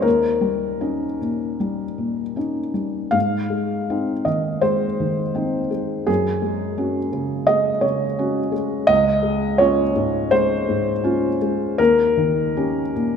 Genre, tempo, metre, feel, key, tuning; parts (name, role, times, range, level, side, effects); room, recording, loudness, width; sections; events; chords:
neoclassical minimalist piano; 72-87 BPM; 4/4; rubato; Ab major; A4 = 440 Hz
felt-muted upright piano; solo; 0.0-13.2 s; Db2 to F5; -18 LUFS; left 1 dB
wet concert hall reverb, RT60 2.0 s; -18 LUFS; side -7 dB against mid
0.0-13.2 A section
0.0 Eb7; 3.1 Ab; 6.1 Gbsus2; 8.9 Db; 11.8 Eb7